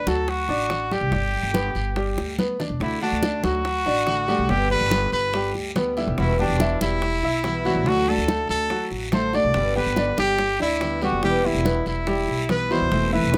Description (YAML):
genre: latin, Cuban son and guajira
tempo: 142 BPM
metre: 4/4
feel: straight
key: G major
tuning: A4 = 440 Hz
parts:
  - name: clear trumpet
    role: melody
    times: 0.0-13.4 s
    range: D4 to D5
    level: -27 LUFS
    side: equal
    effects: none
  - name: bright grand piano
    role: arpeggios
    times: 0.0-13.4 s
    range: B2 to B5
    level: -29 LUFS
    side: equal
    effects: none
  - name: upright bass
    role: bass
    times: 0.0-13.4 s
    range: E1 to D2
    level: -30 LUFS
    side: equal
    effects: none
  - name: congas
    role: percussion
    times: 0.1-13.4 s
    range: none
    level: -31 LUFS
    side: equal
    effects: none
  - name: guiro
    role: percussion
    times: 0.1-13.4 s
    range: none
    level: -39 LUFS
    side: equal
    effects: none
  - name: bongos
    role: percussion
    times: 0.3-13.4 s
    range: none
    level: -33 LUFS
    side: equal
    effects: none
  - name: fingerpicked steel-string acoustic guitar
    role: accompaniment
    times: 2.8-13.4 s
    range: B2 to G4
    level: -29 LUFS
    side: equal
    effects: none
room: light reverb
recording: close, detailed microphones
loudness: -23 LUFS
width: mono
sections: 0.0-13.4 A section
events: drum fill 2.2-2.8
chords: 0.0 D; 1.1 G; 2.8 D; 4.5 G; 6.2 Emadd9; 7.9 D; 9.5 G; 11.2 Em